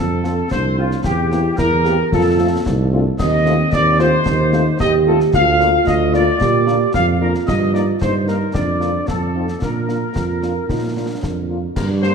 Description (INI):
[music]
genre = military-style march for wind band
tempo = 112 BPM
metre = 2/4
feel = straight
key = Bb major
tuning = A4 = 441 Hz
[part]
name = dark trumpet section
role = melody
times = 0.0-12.1 s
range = F4 to F5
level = -21 LUFS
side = left 1 dB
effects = none
[part]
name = dark euphonium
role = second line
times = 0.0-11.7 s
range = C4 to G4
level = -22 LUFS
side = right 2 dB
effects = none
[part]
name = mellow flute section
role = second line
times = 0.0-11.4 s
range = F4 to F5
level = -25 LUFS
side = left 1 dB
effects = none
[part]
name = mellow tuba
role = bass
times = 0.0-12.1 s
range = C2 to Bb2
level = -19 LUFS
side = right 2 dB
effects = none
[part]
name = mellow French horn section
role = accompaniment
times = 0.2-12.1 s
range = A3 to G4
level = -26 LUFS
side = left 6 dB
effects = none
[part]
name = concert snare drum, concert bass drum and clash cymbals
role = drums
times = 0.2-12.1 s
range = none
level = -25 LUFS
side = left 2 dB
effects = none
[part]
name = dark trombone section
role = sustained chords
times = 11.8-12.1 s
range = G3 to D4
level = -23 LUFS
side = right 2 dB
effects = none
[sound]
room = moderate scoring stage reverb, RT60 1.8 s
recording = dark, warm production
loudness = -14 LUFS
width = side -6 dB against mid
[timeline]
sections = 0.0-11.8 A section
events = none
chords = 0.0 F; 1.0 C7/E; 2.1 F; 3.2 F7/Eb; 5.3 Bb/D; 6.4 Bb; 7.5 Eb/G; 8.5 Bb/F; 9.1 F7; 9.6 Bb